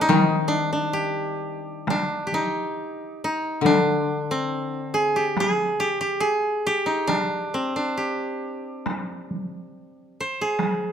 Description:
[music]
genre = japanese traditional, Japanese chamber music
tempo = 68 BPM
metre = 2/4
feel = rubato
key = G miyako bushi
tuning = A4 = 445 Hz
[part]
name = koto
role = melody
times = 0.0-10.9 s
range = G3 to C5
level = -24 LUFS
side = right 1 dB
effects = none
[part]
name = koto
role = accompaniment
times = 0.0-6.2 s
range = D3 to Ab3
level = -25 LUFS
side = left 5 dB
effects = none
[part]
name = taiko ensemble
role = percussion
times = 0.1-10.8 s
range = none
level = -26 LUFS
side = right 1 dB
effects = none
[sound]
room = light reverb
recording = close, detailed microphones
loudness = -22 LUFS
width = side -8 dB against mid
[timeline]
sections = 0.0-1.9 A section; 1.9-10.9 B section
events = none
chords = none

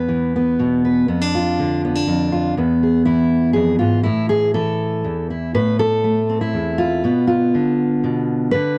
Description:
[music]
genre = folk, solo fingerstyle acoustic guitar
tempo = 121 BPM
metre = 3/4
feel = straight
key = A harmonic minor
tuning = A4 = 440 Hz
[part]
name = fingerpicked steel-string acoustic guitar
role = solo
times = 0.0-8.8 s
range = E2 to B4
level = -18 LUFS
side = equal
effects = none
[sound]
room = little or no reverb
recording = dry, close 1970s-style studio recording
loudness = -18 LUFS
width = mono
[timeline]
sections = 0.0-5.5 A section; 5.5-8.8 A section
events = none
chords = 0.0 E5; 1.1 Dm/F; 2.6 E; 4.0 A5; 5.5 Am; 7.0 Bdim

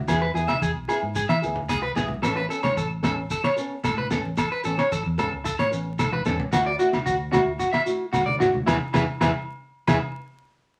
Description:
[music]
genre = highlife guitar band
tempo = 112 BPM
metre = 4/4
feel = straight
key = A major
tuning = A4 = 440 Hz
[part]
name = fingered electric bass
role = bass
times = 0.0-10.0 s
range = A1 to E3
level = -32 LUFS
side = equal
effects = none
[part]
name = nylon-string guitar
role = accompaniment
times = 0.1-10.0 s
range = E3 to A4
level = -30 LUFS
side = equal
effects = none
[part]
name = electric guitar at the edge of break-up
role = arpeggios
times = 0.1-10.0 s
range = E4 to E5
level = -28 LUFS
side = equal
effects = none
[part]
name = cloth-damped thuddy drum kit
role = drums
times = 0.1-10.0 s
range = kick drum, snare drum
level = -31 LUFS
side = equal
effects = none
[part]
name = agogo bells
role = percussion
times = 0.1-10.0 s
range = none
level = -34 LUFS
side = equal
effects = none
[part]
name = maracas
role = percussion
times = 0.1-10.0 s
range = none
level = -42 LUFS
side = equal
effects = none
[part]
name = congas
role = percussion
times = 0.5-10.0 s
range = none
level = -34 LUFS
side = equal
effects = none
[sound]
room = moderate studio reverb, RT60 0.5 s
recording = vinyl crackle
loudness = -24 LUFS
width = mono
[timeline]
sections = 0.0-10.8 A section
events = band accent 8.7-10.8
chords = 0.1 E; 2.2 Aadd9; 6.5 Dadd9; 8.7 E

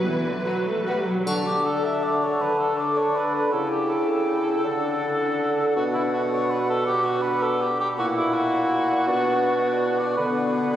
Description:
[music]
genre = classical, orchestral ballroom waltz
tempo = 141-178 BPM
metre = 3/4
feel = rubato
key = D major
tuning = A4 = 440 Hz
[part]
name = muted chamber violin section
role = melody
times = 0.0-1.0 s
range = B4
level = -32 LUFS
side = left 1 dB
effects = none
[part]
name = muted symphonic viola section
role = accompaniment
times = 0.0-1.3 s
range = D3 to A3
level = -27 LUFS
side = right 1 dB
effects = none
[part]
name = concert harp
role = arpeggios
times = 0.0-10.8 s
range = A#2 to G5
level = -31 LUFS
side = left 3 dB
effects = none
[part]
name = muted studio violin section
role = second line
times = 0.5-1.0 s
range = F#4 to B4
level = -34 LUFS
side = left 1 dB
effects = none
[part]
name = bright clarinet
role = second line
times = 1.3-10.8 s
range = B3 to E4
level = -29 LUFS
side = left 2 dB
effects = none
[part]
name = mellow cor anglais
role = second line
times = 1.3-10.8 s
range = E4 to E5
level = -25 LUFS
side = right 1 dB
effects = none
[part]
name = silver concert flute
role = second line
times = 1.3-10.8 s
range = F#5 to A5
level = -30 LUFS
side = left 2 dB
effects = none
[part]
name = warm bassoon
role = accompaniment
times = 1.3-10.8 s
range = A#2 to D3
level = -25 LUFS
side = right 1 dB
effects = none
[part]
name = triangle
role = percussion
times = 1.3-2.0 s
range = none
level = -36 LUFS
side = equal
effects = none
[sound]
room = wet cathedral reverb, RT60 4.3 s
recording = recorded on a phone in the room, studio reverb, compression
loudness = -21 LUFS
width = side -11 dB against mid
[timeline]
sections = 0.0-1.3 A section; 1.3-10.8 B section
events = none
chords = 0.0 Bm; 1.3 D; 3.5 A7/C#; 4.6 D; 5.8 Bm; 8.0 F#7/A#; 9.1 Bm; 10.2 Bm/D

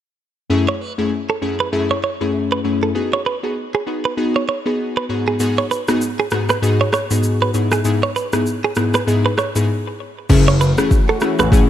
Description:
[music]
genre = afrobeats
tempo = 98 BPM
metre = 4/4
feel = swing 58% on 16ths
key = F# dorian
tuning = A4 = 440 Hz
[part]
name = glassy digital keys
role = accompaniment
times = 0.5-11.7 s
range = F#2 to G#4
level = -18 LUFS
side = left 2 dB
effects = chorus
[part]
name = direct-recorded clean electric guitar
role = riff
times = 0.7-11.5 s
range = G#4 to C#5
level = -22 LUFS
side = right 5 dB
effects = ping-pong delay
[part]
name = afro-pop drum kit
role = drums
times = 5.4-11.7 s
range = crash cymbal, kick drum, rim click, shaker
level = -19 LUFS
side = equal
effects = overdrive
[part]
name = warm analog pad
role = sustained chords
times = 10.3-11.7 s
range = E3 to F#4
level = -24 LUFS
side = left 1 dB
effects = chorus
[part]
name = dark concert grand piano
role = bass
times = 10.3-11.6 s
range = F#1 to A1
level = -15 LUFS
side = equal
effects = none
[sound]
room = light reverb, digital ambience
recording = none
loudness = -16 LUFS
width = side -11 dB against mid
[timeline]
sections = 0.5-10.3 A section; 10.3-11.7 B section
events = break 9.7-10.3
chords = 0.5 F#m7; 3.0 G#m7; 7.5 C#m7/G# (rootless); 10.3 F#m7

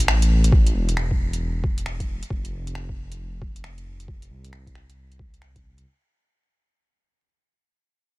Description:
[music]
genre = future garage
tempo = 135 BPM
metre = 4/4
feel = swing 63% on 16ths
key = unclear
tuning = A4 = 443 Hz
[part]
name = dark detuned saw bass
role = bass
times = 0.0-5.8 s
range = E1 to C2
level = -24 LUFS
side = equal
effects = tube saturation, sidechain pumping
[part]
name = garage drum kit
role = drums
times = 0.0-5.8 s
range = finger snaps, hi-hat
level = -27 LUFS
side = equal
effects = soft clipping on snare
[part]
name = electronic kick drum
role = drums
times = 0.5-5.6 s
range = none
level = -22 LUFS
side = equal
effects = overdrive
[sound]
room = little or no reverb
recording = dense, heavily limited modern master, vinyl crackle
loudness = -20 LUFS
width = side -21 dB against mid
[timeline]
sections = 0.0-5.9 A section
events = fade-out 0.0-5.9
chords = none

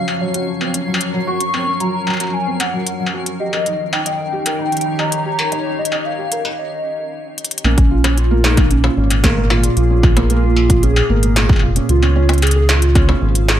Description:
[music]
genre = IDM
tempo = 113 BPM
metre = 4/4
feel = straight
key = Bb minor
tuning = A4 = 440 Hz
[part]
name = warbly nostalgic lead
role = melody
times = 0.0-13.5 s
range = Db4 to Db6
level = -21 LUFS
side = equal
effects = analog chorus, ping-pong delay
[part]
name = glassy FM pad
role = sustained chords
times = 0.0-13.6 s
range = Bb2 to F5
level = -24 LUFS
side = equal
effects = ensemble chorus, built-in reverb, vintage 12-bit sampler grit
[part]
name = twinkling granular texture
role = texture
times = 0.0-6.6 s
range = Db4 to C7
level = -31 LUFS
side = right 1 dB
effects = built-in reverb, analog chorus
[part]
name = industrial drum kit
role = drums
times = 0.1-13.6 s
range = hi-hat, snare drum, struck metal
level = -20 LUFS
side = left 1 dB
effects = none
[part]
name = felt-muted upright piano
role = arpeggios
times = 0.2-13.5 s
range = Gb3 to Eb5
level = -24 LUFS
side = right 2 dB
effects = analog chorus, low-pass filter, digital delay
[part]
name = round analog bass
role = bass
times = 7.6-13.6 s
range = F1 to Db2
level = -14 LUFS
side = equal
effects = none
[part]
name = electronic kick drum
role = drums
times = 7.8-13.1 s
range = none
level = -14 LUFS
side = equal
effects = none
[sound]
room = light reverb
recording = bright 1980s-style digital production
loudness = -13 LUFS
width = side -11 dB against mid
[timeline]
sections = 0.0-7.6 A section; 7.6-13.6 B section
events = break 6.6-7.6; drum fill 7.4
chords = 0.0 Gbmaj7; 3.4 Eb7; 7.6 Bbm7; 11.9 Dbmaj7

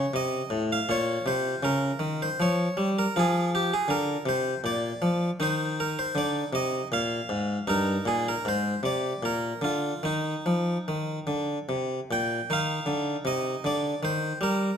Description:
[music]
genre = classical, baroque-style suite movement for harpsichord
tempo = 71-82 BPM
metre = 3/4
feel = rubato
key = Eb major from 3.1 s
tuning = A4 = 438 Hz
[part]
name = harpsichord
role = solo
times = 0.0-14.8 s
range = G2 to G5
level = -25 LUFS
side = equal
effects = none
[sound]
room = moderate recital hall reverb, RT60 1.3 s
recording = close, detailed microphones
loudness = -25 LUFS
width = side -8 dB against mid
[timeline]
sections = 0.0-12.5 A section; 12.5-14.8 B section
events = none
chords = 0.2 Adim; 0.9 Bbm; 3.1 F5; 4.6 Bb; 5.4 Cmadd9; 6.9 Bb5; 7.7 Eb/G; 8.4 Ab; 9.2 Bb; 10.0 Eb5; 12.5 Cmadd9; 14.0 Eb

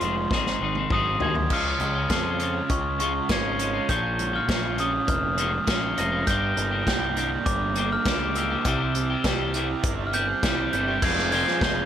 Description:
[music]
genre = indie rock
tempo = 101 BPM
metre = 4/4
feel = straight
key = unclear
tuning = A4 = 439 Hz
[part]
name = glockenspiel with rubber mallets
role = melody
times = 0.0-11.9 s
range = C6 to Bb6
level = -27 LUFS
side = left 1 dB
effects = analog delay
[part]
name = biting overdriven guitar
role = riff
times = 0.0-11.9 s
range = F2 to Ab4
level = -29 LUFS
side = left 7 dB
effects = none
[part]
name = thick fuzz guitar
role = riff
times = 0.0-11.9 s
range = F2 to G4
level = -30 LUFS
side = right 7 dB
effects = distortion, lush chorus
[part]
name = overdriven picked electric bass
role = bass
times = 0.0-11.8 s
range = F1 to F2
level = -30 LUFS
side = left 1 dB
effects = none
[part]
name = unplugged drum kit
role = drums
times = 0.0-11.8 s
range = crash cymbal, hi-hat, kick drum, snare drum, toms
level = -28 LUFS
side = equal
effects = none
[part]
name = warm analog pad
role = sustained chords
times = 11.2-11.9 s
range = F4 to Ab5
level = -33 LUFS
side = left 2 dB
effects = chorus
[sound]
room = light reverb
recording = none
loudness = -22 LUFS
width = side -10 dB against mid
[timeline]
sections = 0.0-1.5 A section; 1.5-11.0 B section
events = drum fill 0.3-1.5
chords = 0.3 Ab7; 1.5 Db; 3.9 Bbm7; 6.3 Gm; 8.7 C; 11.0 Fm

